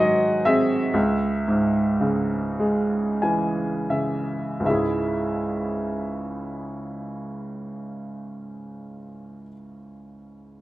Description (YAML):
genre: classical, lyrical solo piano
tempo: 38-65 BPM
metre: 3/4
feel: rubato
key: C# minor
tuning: A4 = 441 Hz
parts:
  - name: clear upright piano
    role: solo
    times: 0.0-10.6 s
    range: C#2 to G#5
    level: -22 LUFS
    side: equal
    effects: none
room: light reverb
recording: close, detailed microphones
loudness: -21 LUFS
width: side -16 dB against mid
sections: 0.0-4.7 A section; 4.7-9.1 B section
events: slowing down 0.0-4.7; upright piano fill 2.6-4.7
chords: 0.0 G#7; 0.9 C#m